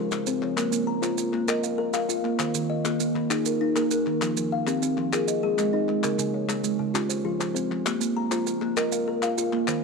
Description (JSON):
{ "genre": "southern african traditional, mbira-style interlocking cycle", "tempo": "132 BPM (dotted quarters)", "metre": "12/8", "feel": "straight", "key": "Bb dorian", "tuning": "A4 = 439 Hz", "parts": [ { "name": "kalimba", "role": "arpeggios", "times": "0.0-9.8 s", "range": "Db3 to Bb5", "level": "-26 LUFS", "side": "left 9 dB", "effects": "none" }, { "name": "kalimba", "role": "arpeggios", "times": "0.0-9.8 s", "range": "Db3 to F5", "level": "-27 LUFS", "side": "right 10 dB", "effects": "none" }, { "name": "group handclap", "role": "percussion", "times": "0.1-9.8 s", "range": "none", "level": "-32 LUFS", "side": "left 8 dB", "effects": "none" }, { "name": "maracas", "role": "percussion", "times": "0.1-9.8 s", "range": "none", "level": "-34 LUFS", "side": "right 13 dB", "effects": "none" } ], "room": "moderate echo chamber reverb, RT60 1.6 s, studio ambience", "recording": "1960s-style stereo with parts hard left and right", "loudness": "-23 LUFS", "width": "side -4 dB against mid", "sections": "0.6-9.8 A section", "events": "none", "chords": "0.0 F5; 0.6 Bb5; 2.4 Eb5; 4.2 F5; 5.1 Ab5; 6.0 Db5; 6.9 F5; 7.9 Bb5" }